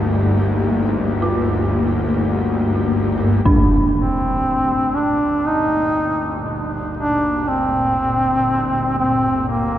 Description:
dark ambient drone; 60 BPM; 4/4; straight; G minor; A4 = 440 Hz
granular cloud pad; sustained chords; 0.0-9.8 s; G2 to G4; -22 LUFS; left 1 dB; built-in reverb
dark detuned synth bell; arpeggios; 0.0-9.8 s; D4 to F4; -24 LUFS; right 2 dB; chorus, tape echo
bowed-like drone; drone; 0.0-9.8 s; G1 to D2; -23 LUFS; left 1 dB; built-in reverb
impact; percussion; 3.5-3.7 s; -21 LUFS; equal; low-pass filter on sfx
mellow duduk; melody; 4.0-9.8 s; Bb3 to Eb4; -18 LUFS; equal; tape echo
wet cathedral reverb, RT60 5.2 s; -16 LUFS; side -12 dB against mid
0.0-3.5 A section; 3.5-9.8 B section
0.0 Eb/G; 3.5 Gm

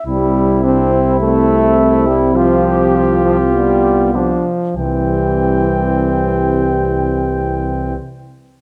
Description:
classical, brass quintet; 96-105 BPM; 4/4; straight; C major; A4 = 438 Hz
mellow trumpet; melody; 0.0-8.0 s; E4 to G5; -25 LUFS; equal
warm flugelhorn; second line; 0.1-8.0 s; C4 to G4; -23 LUFS; equal
brilliant trombone; accompaniment; 0.1-8.0 s; E3 to C4; -19 LUFS; equal
mellow French horn; accompaniment; 0.1-8.0 s; G3 to C4; -23 LUFS; equal
mellow bass trombone; bass; 0.1-8.0 s; C2; -20 LUFS; equal
moderate recital hall reverb, RT60 1.4 s; close, detailed microphones; -14 LUFS; mono
0.1-4.8 A section; 4.8-7.2 B section
slowing down 0.0-4.8
0.1 C; 2.4 G7/C; 4.8 C

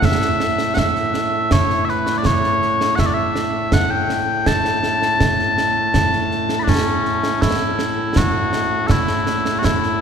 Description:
scottish traditional, Scottish pipe music; 81 BPM; 3/4; straight; A mixolydian; A4 = 441 Hz
mellow small bagpipes; melody; 0.0-10.0 s; A2 to B5; -18 LUFS; left 1 dB
concert snare drum and concert bass drum; drums; 0.0-9.9 s; -20 LUFS; right 2 dB
wet church reverb, RT60 3.1 s; recorded in a church or concert hall; -16 LUFS; side -7 dB against mid
0.0-6.7 A section; 6.7-10.0 A section

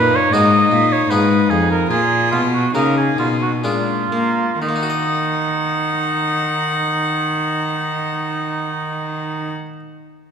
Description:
classical, baroque-style sonata movement with continuo; 60-80 BPM; 3/4; rubato; Eb minor; A4 = 437 Hz
rich violin; melody; 0.0-9.5 s; D4 to Gb5; -24 LUFS; left 5 dB
warm oboe; second line; 0.0-9.5 s; Eb4 to Eb5; -19 LUFS; right 4 dB
harpsichord; accompaniment; 0.0-9.8 s; F2 to Eb5; -22 LUFS; left 5 dB
warm cello; bass; 0.0-9.5 s; F2 to Bb3; -21 LUFS; equal
wet scoring stage reverb, RT60 2.1 s; minimal, uncompressed stereo recording; -16 LUFS; side -7 dB against mid
0.0-4.6 A section; 4.6-10.3 B section
slowing down 0.0-4.6
0.0 Ebm; 1.1 Fm7b5/Ab; 1.9 Eb5/Bb; 3.6 Bb7; 4.6 Ebm

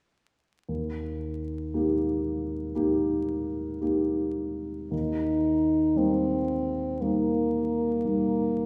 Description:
classical, romantic duo for French horn and grand piano; 57 BPM; 4/4; rubato; Eb major; A4 = 440 Hz
dark baby grand piano; accompaniment; 0.7-8.7 s; Eb2 to G4; -30 LUFS; equal
mellow French horn; melody; 4.9-8.7 s; Bb3 to Eb4; -28 LUFS; equal
wet recital hall reverb, RT60 1.3 s; recorded in a church or concert hall, vinyl crackle; -27 LUFS; mono
0.7-4.9 A section; 4.9-8.7 B section
0.7 Eb

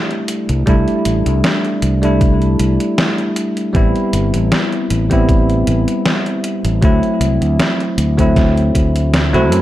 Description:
vaporwave; 78 BPM; 4/4; swing 54% on 16ths; C lydian; A4 = 439 Hz
bell-like tine electric piano; accompaniment; 0.0-9.6 s; F#3 to E4; -16 LUFS; equal; lush chorus, tape echo
detuned 8-bit digital drum machine; drums; 0.1-9.6 s; hi-hat, snare drum; -20 LUFS; equal; gated reverb
fingered electric bass; bass; 0.5-9.6 s; G1 to F#2; -16 LUFS; equal
electronic kick drum; drums; 0.7-8.9 s; -15 LUFS; equal
digital ambience; -12 LUFS; side -14 dB against mid
0.0-9.6 A section
0.0 C69; 3.7 Am7; 6.8 D9

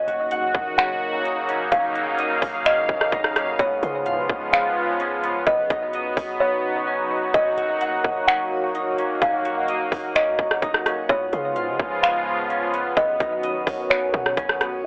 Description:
hip hop, atmospheric cloud-rap; 128 BPM; 4/4; half-time; Eb minor; A4 = 440 Hz
kalimba; melody; 0.0-14.8 s; Db5 to Gb5; -23 LUFS; equal; low-pass filter, tape echo
sweeping resonant pad; sustained chords; 0.0-14.9 s; Db3 to F5; -24 LUFS; equal; chorus, tremolo, sidechain pumping, low-pass filter
concert harp; arpeggios; 0.0-14.9 s; Cb4 to Gb5; -29 LUFS; equal; low-pass filter, tape echo
warm 808-style bass; bass; 0.0-14.8 s; Eb1 to Db3; -35 LUFS; equal
trap drum kit; drums; 0.1-14.7 s; finger snaps, hi-hat, kick drum, rim click; -22 LUFS; equal; overdrive
light reverb; dry, gritty hardware recording, cassette tape, telephone sound; -19 LUFS; side -34 dB against mid
0.0-14.8 A section
drums muted 6.4-7.3
0.0 Ebm7; 3.6 Db7; 5.5 Badd9; 7.3 Ebm7; 11.1 Db7; 13.0 Badd9

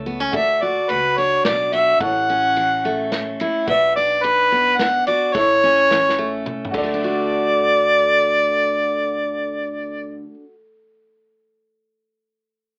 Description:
honky-tonk and classic country; 108 BPM; 3/4; straight; D major; A4 = 440 Hz
mellow harmonica; melody; 0.0-10.2 s; B4 to F#5; -19 LUFS; equal
clear upright piano; accompaniment; 0.0-10.2 s; C#4 to D5; -32 LUFS; equal
picked steel-string acoustic guitar; accompaniment; 0.0-10.5 s; E2 to F#4; -28 LUFS; equal
upright bass; bass; 0.0-10.2 s; A1 to D2; -40 LUFS; equal
unplugged drum kit; drums; 0.3-6.9 s; crash cymbal, kick drum, ride cymbal, snare drum, toms; -31 LUFS; equal
moderate booth ambience, RT60 0.2 s; AM radio sound; -18 LUFS; mono
0.3-7.0 A section; 7.0-10.4 B section
drum fill 5.9-7.0
0.3 D; 2.0 A; 3.7 Bm; 5.3 A; 6.7 D

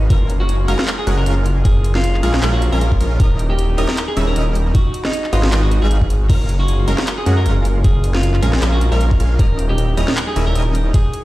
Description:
future bass; 155 BPM; 4/4; swing 55% on 16ths, half-time; F# major; A4 = 439 Hz
semi-hollow electric guitar; melody; 0.0-11.2 s; D#4 to A#4; -25 LUFS; equal; sidechain pumping, digital delay
concert harp; arpeggios; 0.0-11.2 s; D#4 to B4; -31 LUFS; left 1 dB; sidechain pumping, digital delay
wide unison pluck; arpeggios; 0.0-10.9 s; D#6 to F#6; -34 LUFS; equal
supersaw stab; riff; 0.0-10.9 s; G3 to F#5; -24 LUFS; right 1 dB; sidechain pumping
wide detuned saw bass; bass; 0.0-10.9 s; D#1 to F#2; -16 LUFS; equal; chorus, sidechain pumping
electronic kick drum; drums; 0.1-11.0 s; -14 LUFS; equal; small room ambience
trap drum kit; drums; 0.1-11.2 s; crash cymbal, handclaps, hi-hat, snare drum; -24 LUFS; equal; small room ambience
digital ambience; played on a big sound system in a bare room, stone room reverb, lossy compression artefacts; -14 LUFS; side -17 dB against mid
0.0-11.2 A section
0.1 F#maj9; 3.2 D#7b9; 4.7 G#m7; 6.3 F#maj9; 9.4 D#7b9

